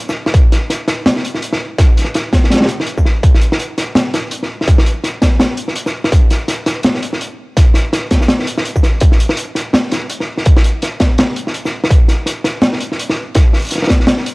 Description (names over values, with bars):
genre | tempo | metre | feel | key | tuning
drum and bass | 166 BPM | 4/4 | swing 58% on 16ths, half-time | none | none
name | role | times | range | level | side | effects
crunchy breakbeat drum kit | drums | 0.1-14.3 s | hi-hat, shaker, snare drum | -15 LUFS | equal | none
electronic kick drum | drums | 0.3-14.0 s | none | -10 LUFS | equal | distortion
room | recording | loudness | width
little or no reverb | dry, gritty hardware recording, transformer saturation, cassette tape | -12 LUFS | side -27 dB against mid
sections
0.0-14.3 A section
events
none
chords
none